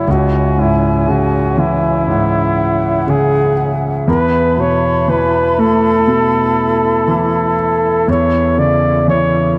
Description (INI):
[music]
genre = pop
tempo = 60 BPM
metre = 4/4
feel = straight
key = unclear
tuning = A4 = 445 Hz
[part]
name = warm flugelhorn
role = melody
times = 0.0-9.6 s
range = E4 to D5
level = -18 LUFS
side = equal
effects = none
[part]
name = clear concert grand piano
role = accompaniment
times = 0.0-9.6 s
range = C#2 to A3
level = -18 LUFS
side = equal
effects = none
[part]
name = breathy mellow flute section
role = sustained chords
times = 0.0-9.6 s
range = C#4 to B5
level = -23 LUFS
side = equal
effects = none
[sound]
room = moderate plate reverb, RT60 3.1 s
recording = dark, warm production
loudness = -14 LUFS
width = mono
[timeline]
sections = 0.0-9.6 A section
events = none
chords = 0.1 C#m; 4.1 Esus4; 8.1 A/E